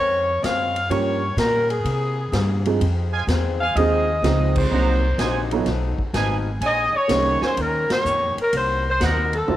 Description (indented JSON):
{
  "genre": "jazz, big band swing",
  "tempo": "126 BPM",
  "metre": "4/4",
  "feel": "swing 68% on 8ths",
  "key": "unclear",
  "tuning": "A4 = 440 Hz",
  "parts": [
    { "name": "bright saxophone section", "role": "melody", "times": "0.0-9.6 s", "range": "Ab4 to F5", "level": "-21 LUFS", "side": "left 1 dB", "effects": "cassette tape" },
    { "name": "picked swing-style acoustic guitar", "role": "accompaniment", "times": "0.0-9.6 s", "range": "Bb2 to Bb4", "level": "-31 LUFS", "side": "left 8 dB", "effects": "none" },
    { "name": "upright bass", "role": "bass", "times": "0.0-9.6 s", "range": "Ab1 to C3", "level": "-23 LUFS", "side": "equal", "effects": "tube saturation" },
    { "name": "swinging big-band drum kit", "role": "drums", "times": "0.4-9.6 s", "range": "crash cymbal, hi-hat, kick drum, ride cymbal, snare drum, toms", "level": "-29 LUFS", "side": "equal", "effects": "cassette tape" },
    { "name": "warm baby grand piano", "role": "accompaniment", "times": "0.9-9.6 s", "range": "F3 to C5", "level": "-25 LUFS", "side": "right 6 dB", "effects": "none" },
    { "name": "clear trumpet section", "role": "stabs", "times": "3.1-9.2 s", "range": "Bb4 to Bb5", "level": "-29 LUFS", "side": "right 6 dB", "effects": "none" }
  ],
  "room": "moderate spring reverb, RT60 2.0 s",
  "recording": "home recording on cassette",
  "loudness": "-18 LUFS",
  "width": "side -13 dB against mid",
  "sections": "0.0-9.6 A section",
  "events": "band accent 4.5, 7.8",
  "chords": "0.0 Dbmaj7; 0.9 Gm7b5; 1.9 C7b13; 2.8 Fm7; 4.7 Cm7b5; 5.7 B7#11; 6.6 Bbm11; 8.5 Cm7b5"
}